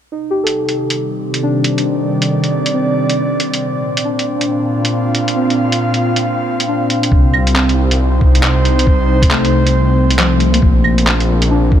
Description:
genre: future garage.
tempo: 137 BPM.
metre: 4/4.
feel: swing 62% on 16ths.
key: unclear.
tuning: A4 = 436 Hz.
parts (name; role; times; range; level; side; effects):
muted felt-like synth keys; accompaniment; 0.1-11.8 s; F3 to A4; -19 LUFS; left 2 dB; chorus, phaser, sidechain pumping, dub echo.
airy breathy pad; sustained chords; 0.6-11.8 s; Bb2 to F5; -16 LUFS; right 1 dB; chorus, vintage 12-bit sampler grit, sidechain pumping.
lo-fi sampler-style drum kit; drums; 0.5-11.5 s; claves, handclaps, hi-hat; -18 LUFS; right 1 dB; none.
swelling detuned saw bass; bass; 7.1-11.8 s; Bb1 to C2; -14 LUFS; equal; sidechain pumping.
electronic kick drum; drums; 7.1-11.8 s; none; -12 LUFS; equal; none.
room: light reverb.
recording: none.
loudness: -12 LUFS.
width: side -10 dB against mid.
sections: 0.1-7.1 A section; 7.1-11.8 B section.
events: none.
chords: 0.1 Cm; 3.6 Bb; 7.1 Cm; 10.6 Bb.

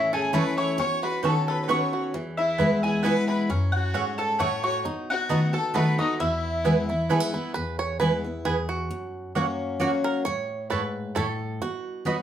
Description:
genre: bluegrass.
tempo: 133 BPM.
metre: 3/4.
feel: straight.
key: E major.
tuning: A4 = 440 Hz.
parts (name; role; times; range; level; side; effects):
bluegrass banjo; melody; 0.0-12.0 s; E3 to C#5; -32 LUFS; right 4 dB; plate reverb.
mandolin; melody; 0.0-7.3 s; D#5 to C#6; -28 LUFS; left 1 dB; plate reverb.
clear fiddle; second line; 0.0-7.3 s; D#4 to C#5; -31 LUFS; left 3 dB; none.
picked steel-string acoustic guitar; accompaniment; 0.0-12.2 s; E2 to F#4; -26 LUFS; left 1 dB; none.
mandolin; stabs; 0.3-12.2 s; A3 to C#6; -27 LUFS; right 6 dB; none.
room: wet studio reverb, RT60 0.6 s.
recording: heard from further back in the room.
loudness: -23 LUFS.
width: side -10 dB against mid.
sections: 0.0-7.6 A section; 7.6-12.2 B section.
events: five-string banjo solo 7.6-12.2.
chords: 0.0 A; 0.8 Badd9; 2.1 E; 3.5 F#m; 4.8 B7; 6.2 E; 8.9 F#; 10.3 A; 11.6 B.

